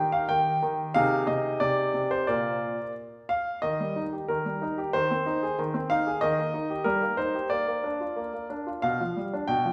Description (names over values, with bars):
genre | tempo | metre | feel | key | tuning
classical-period piano sonatina | 92 BPM | 2/4 | rubato | Eb major | A4 = 439 Hz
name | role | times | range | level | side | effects
bright grand piano | solo | 0.0-9.7 s | Bb2 to G5 | -28 LUFS | equal | none
room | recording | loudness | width
wet recital hall reverb, RT60 1.7 s | none | -28 LUFS | mono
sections
0.0-3.6 A section; 3.6-9.7 B section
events
none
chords
0.0 Eb; 0.9 Ab/C; 2.3 Bb; 3.6 Eb; 4.9 Ab/Eb; 6.2 Eb; 6.9 Eb/G; 7.5 Bb; 8.8 G7/B